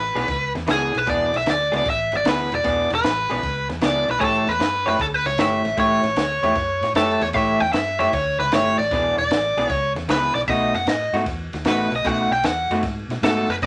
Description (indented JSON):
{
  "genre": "electric blues shuffle",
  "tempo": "153 BPM",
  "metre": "4/4",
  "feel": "swing 68% on 8ths",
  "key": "E mixolydian",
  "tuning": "A4 = 439 Hz",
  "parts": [
    { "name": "biting overdriven guitar", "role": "melody", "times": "0.0-13.7 s", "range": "G#4 to G5", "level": "-23 LUFS", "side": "equal", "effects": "none" },
    { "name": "vintage muted fingered electric bass", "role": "bass", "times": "0.0-13.7 s", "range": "E1 to B2", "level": "-33 LUFS", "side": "equal", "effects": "none" },
    { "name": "electric guitar through a small old amp", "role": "riff", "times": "0.2-13.7 s", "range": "B2 to C#5", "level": "-26 LUFS", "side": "equal", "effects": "none" },
    { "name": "compact cocktail drum kit", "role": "drums", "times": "0.2-13.7 s", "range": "kick drum, ride cymbal, snare drum", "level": "-29 LUFS", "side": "equal", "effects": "none" }
  ],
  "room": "moderate studio ambience, RT60 0.5 s",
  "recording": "vinyl crackle",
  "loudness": "-21 LUFS",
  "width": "mono",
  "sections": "0.0-13.7 A section",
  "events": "none",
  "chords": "0.0 E7; 4.2 A7; 8.9 E7; 10.5 B7"
}